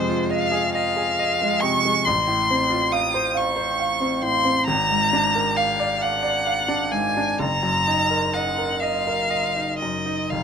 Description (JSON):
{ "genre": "classical, romantic duo for violin and grand piano", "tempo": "38-47 BPM (dotted quarters)", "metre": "6/8", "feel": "rubato", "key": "unclear", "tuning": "A4 = 440 Hz", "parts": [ { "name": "rich violin", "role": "melody", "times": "0.0-10.4 s", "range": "C5 to Eb6", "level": "-21 LUFS", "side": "left 1 dB", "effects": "none" }, { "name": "bright concert grand piano", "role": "accompaniment", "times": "0.0-10.4 s", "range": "F1 to F5", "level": "-23 LUFS", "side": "right 1 dB", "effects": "none" } ], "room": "light reverb", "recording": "minimal, uncompressed stereo recording", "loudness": "-19 LUFS", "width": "side -7 dB against mid", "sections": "0.0-10.4 A section", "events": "none", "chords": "0.0 Fm7; 2.0 F/A; 4.7 Bb7/Ab; 7.4 Ebm/Gb", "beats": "0.74 | 2.05 3.36 | 4.68 6.03 | 7.40 8.81 | 10.32" }